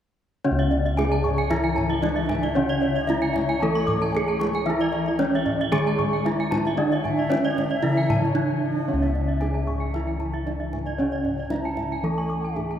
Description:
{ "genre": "Balinese gamelan", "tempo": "114 BPM", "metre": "4/4", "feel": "straight", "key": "C# pelog", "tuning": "A4 = 441 Hz", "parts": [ { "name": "gamelan-type bronze metallophone", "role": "melody", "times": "0.4-12.8 s", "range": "C#4 to A4", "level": "-26 LUFS", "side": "right 3 dB", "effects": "none" }, { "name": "gamelan-type bronze metallophone", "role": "arpeggios", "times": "0.4-12.7 s", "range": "C#5 to D6+35c", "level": "-30 LUFS", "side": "left 4 dB", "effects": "none" }, { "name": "gamelan-type bronze metallophone", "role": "accompaniment", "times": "0.5-12.8 s", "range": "C#3 to A3", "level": "-30 LUFS", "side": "left 4 dB", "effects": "none" }, { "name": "gamelan-type bossed gongs", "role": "bass", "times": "0.5-12.8 s", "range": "C#2 to E4", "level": "-27 LUFS", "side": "equal", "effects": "none" }, { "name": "gamelan-type bronze metallophone", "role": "arpeggios", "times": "0.6-12.8 s", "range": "D5+35c to C#6", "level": "-32 LUFS", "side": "right 3 dB", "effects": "none" }, { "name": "kendang", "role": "percussion", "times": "0.6-12.7 s", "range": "none", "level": "-33 LUFS", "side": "left 1 dB", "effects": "none" }, { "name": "breathy mellow bansuri", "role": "second line", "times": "1.2-12.8 s", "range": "C#5 to A5", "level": "-34 LUFS", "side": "equal", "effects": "none" } ], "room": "wet cathedral reverb, RT60 5.3 s", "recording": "in a vast, echoing space", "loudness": "-21 LUFS", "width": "side -9 dB against mid", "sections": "0.5-12.8 A section", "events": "none", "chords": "none" }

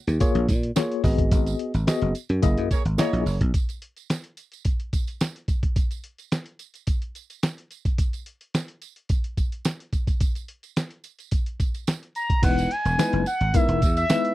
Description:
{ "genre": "early-eighties boogie funk", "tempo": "108 BPM", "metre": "4/4", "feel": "straight", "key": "unclear", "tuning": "A4 = 444 Hz", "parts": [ { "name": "dry thumbed slap bass", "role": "bass", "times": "0.1-3.5, 12.4-14.0 s", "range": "E1 to A#2", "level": "-24 LUFS", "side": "equal", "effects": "none" }, { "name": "dusty soul sampler-style drum kit", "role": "drums", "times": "0.1-14.3 s", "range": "crash cymbal, hi-hat, kick drum, snare drum", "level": "-23 LUFS", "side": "equal", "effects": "none" }, { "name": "tambourine", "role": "percussion", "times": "0.1-14.2 s", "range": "none", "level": "-41 LUFS", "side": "right 17 dB", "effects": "none" }, { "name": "tine electric piano", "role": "accompaniment", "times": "0.2-3.2, 12.4-14.3 s", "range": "G#3 to D#5", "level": "-25 LUFS", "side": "left 4 dB", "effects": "medium stereo tremolo" }, { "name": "warm horn section", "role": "second line", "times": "2.7-3.4 s", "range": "A#3 to C#5", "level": "-30 LUFS", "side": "right 7 dB", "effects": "none" }, { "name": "expressive synth lead", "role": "melody", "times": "12.2-14.3 s", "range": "E5 to A#5", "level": "-24 LUFS", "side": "equal", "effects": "chorus" } ], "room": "little or no reverb", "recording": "dry, close 1970s-style studio recording", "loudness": "-22 LUFS", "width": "side -16 dB against mid", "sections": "0.0-3.5 A section; 3.5-12.4 B section; 12.4-14.3 A section", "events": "band accent 1.3-3.5", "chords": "0.0 A#m7; 1.0 G#m7; 2.4 F#13; 3.5 N.C.; 12.4 Emaj7" }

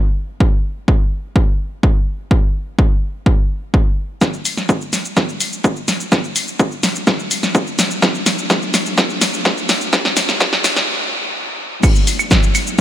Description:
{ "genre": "techno", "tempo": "126 BPM", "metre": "4/4", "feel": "straight", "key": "none", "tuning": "none", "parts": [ { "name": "electronic kick drum", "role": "drums", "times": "0.4-12.8 s", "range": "none", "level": "-14 LUFS", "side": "equal", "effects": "high-pass filter on kick, high-pass filter on room" }, { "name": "punchy analog drum machine", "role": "drums", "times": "4.2-12.8 s", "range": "claves, crash cymbal, hi-hat, shaker, snare drum", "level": "-16 LUFS", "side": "equal", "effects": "low-pass filter on snare, low-pass filter on perc, low-pass filter on hats, low-pass filter on cymbals, low-pass filter on room" } ], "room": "moderate huge ambient reverb, RT60 8.2 s", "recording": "dreamy mix soaked in reverb, high-pass filter", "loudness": "-14 LUFS", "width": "side -12 dB against mid", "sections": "0.0-4.2 A section; 4.2-11.8 B section", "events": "build-up 4.2-11.8; drum fill 4.2-10.9; filter sweep 4.2-11.8; stop 10.9-11.8", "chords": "none" }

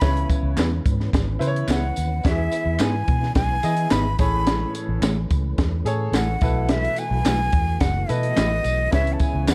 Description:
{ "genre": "uptempo 1960s-style soul", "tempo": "108 BPM", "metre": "4/4", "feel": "straight", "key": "E major", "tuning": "A4 = 440 Hz", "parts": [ { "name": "breathy jazz flute", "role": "melody", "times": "0.0-9.5 s", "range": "D#5 to B5", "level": "-28 LUFS", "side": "equal", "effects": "none" }, { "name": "clear baby grand piano", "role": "accompaniment", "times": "0.0-9.5 s", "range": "A2 to E5", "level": "-31 LUFS", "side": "equal", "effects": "none" }, { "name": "percussive tonewheel organ", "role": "sustained chords", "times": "0.0-9.5 s", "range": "E3 to B4", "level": "-37 LUFS", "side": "equal", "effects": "fast rotary speaker, chorus vibrato" }, { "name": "vintage muted fingered electric bass", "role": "bass", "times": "0.0-9.5 s", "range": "F#1 to E3", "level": "-26 LUFS", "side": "equal", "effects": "none" }, { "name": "compact cocktail drum kit", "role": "drums", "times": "0.0-9.5 s", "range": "hi-hat, kick drum, snare drum", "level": "-25 LUFS", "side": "equal", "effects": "none" }, { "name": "tambourine and handclaps", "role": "percussion", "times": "0.0-9.5 s", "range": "none", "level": "-38 LUFS", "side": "equal", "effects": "none" }, { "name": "mellow electric guitar", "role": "stabs", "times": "0.6-9.5 s", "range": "A3 to C#5", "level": "-31 LUFS", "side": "equal", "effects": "none" } ], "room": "studio reverb", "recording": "dark, warm production", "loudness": "-22 LUFS", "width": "mono", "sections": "0.0-9.5 A section", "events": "none", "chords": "0.0 C#m7; 2.2 Emaj7; 4.2 Amaj7; 6.4 B7sus4; 8.9 C#m7" }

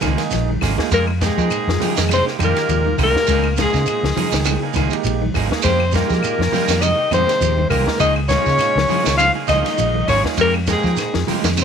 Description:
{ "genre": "afrobeat", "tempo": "101 BPM", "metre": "4/4", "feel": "swing 55% on 16ths", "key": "F minor", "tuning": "A4 = 441 Hz", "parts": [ { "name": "electric guitar at the edge of break-up", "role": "arpeggios", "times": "0.0-11.6 s", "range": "C3 to Ab3", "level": "-26 LUFS", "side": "left 16 dB", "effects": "lush chorus" }, { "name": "electric guitar at the edge of break-up", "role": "stabs", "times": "0.0-11.5 s", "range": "F3 to Ab4", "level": "-26 LUFS", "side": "right 15 dB", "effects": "none" }, { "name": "fingered electric bass", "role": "bass", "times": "0.0-11.6 s", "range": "Ab1 to F3", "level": "-20 LUFS", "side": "equal", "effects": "none" }, { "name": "compact cocktail drum kit", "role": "drums", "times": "0.0-11.6 s", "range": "hi-hat, kick drum, ride cymbal, snare drum", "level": "-26 LUFS", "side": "left 3 dB", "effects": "none" }, { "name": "claves", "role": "percussion", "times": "0.0-11.6 s", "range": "none", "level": "-31 LUFS", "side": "left 16 dB", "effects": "none" }, { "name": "congas", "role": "percussion", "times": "0.0-11.6 s", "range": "none", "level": "-28 LUFS", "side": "right 15 dB", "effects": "none" }, { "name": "shekere", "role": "percussion", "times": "0.0-11.6 s", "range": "none", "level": "-27 LUFS", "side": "right 10 dB", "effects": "none" }, { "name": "overdriven tine electric piano", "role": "accompaniment", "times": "0.2-11.6 s", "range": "Ab3 to G5", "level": "-27 LUFS", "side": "right 16 dB", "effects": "phaser" }, { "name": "clear alto saxophone", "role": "melody", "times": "0.9-11.6 s", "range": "Ab4 to F5", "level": "-19 LUFS", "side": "left 3 dB", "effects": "none" }, { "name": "brilliant trombone section", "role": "second line", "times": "0.9-11.2 s", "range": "Ab2 to F3", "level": "-32 LUFS", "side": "left 13 dB", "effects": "none" }, { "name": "raspy tenor saxophone", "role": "second line", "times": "0.9-11.6 s", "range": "Ab3 to F4", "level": "-28 LUFS", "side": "right 13 dB", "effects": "tape echo" } ], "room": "light reverb, small room ambience", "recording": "1960s-style stereo with parts hard left and right", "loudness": "-15 LUFS", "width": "side -7 dB against mid", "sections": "0.0-11.6 A section", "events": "none", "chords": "0.0 Db69; 0.9 Fm11; 3.3 Db69; 5.6 Fm11; 8.0 Db69; 10.4 Fm11" }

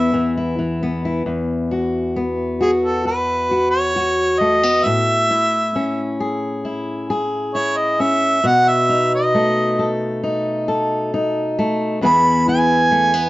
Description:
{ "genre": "acoustic folk duo or small band", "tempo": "67 BPM", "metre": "4/4", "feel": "straight", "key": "E major", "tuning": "A4 = 441 Hz", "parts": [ { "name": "clear harmonica", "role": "melody", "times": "0.0-13.3 s", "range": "G#4 to B5", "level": "-16 LUFS", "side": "right 1 dB", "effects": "plate reverb" }, { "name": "fingerpicked steel-string acoustic guitar", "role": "accompaniment", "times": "0.0-13.3 s", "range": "E2 to A4", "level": "-19 LUFS", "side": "left 1 dB", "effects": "none" } ], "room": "moderate studio reverb, RT60 0.8 s", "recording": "worn, warbling old tape, cassette tape, warbly pitch drift, nothing above 7.6 kHz", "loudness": "-16 LUFS", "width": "side -18 dB against mid", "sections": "0.0-1.3 A section; 1.3-13.3 B section", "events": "harmonica solo 1.3-13.3", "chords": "0.0 E5; 1.3 Esus2; 4.8 Amaj7; 8.4 B7; 12.0 E" }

